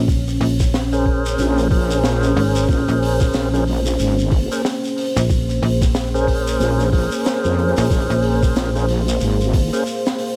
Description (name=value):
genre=glitch hop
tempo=92 BPM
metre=4/4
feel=swing 60% on 16ths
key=Bb minor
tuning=A4 = 440 Hz
part: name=dark analog pad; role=sustained chords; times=0.0-10.4 s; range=Bb3 to F5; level=-25 LUFS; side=equal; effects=chorus, sidechain pumping
part: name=slap-like FM bass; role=bass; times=0.0-8.5 s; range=Ab1 to Bb1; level=-22 LUFS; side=equal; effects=none
part: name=electronic kick drum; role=drums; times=0.1-9.7 s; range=none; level=-20 LUFS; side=equal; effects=none
part: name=open jazz drum kit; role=drums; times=0.1-10.3 s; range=hi-hat, rim click, snare drum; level=-30 LUFS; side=equal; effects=none
part: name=shekere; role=percussion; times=0.1-10.2 s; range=none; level=-35 LUFS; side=equal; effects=none
part: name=tonewheel organ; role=stabs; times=0.9-9.8 s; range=Db4 to C5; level=-25 LUFS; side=equal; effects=slow rotary speaker, sidechain pumping, digital delay
part: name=wobble bass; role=bass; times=1.4-9.7 s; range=Ab1 to F2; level=-22 LUFS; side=equal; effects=chorus, overdrive
room=little or no reverb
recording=none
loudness=-18 LUFS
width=mono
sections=0.0-10.4 A section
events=none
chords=0.0 Bbm9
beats=| 0.08 0.73 1.39 2.04 | 2.69 3.34 3.99 4.65 | 5.30 5.95 6.60 7.25 | 7.91 8.56 9.21 9.86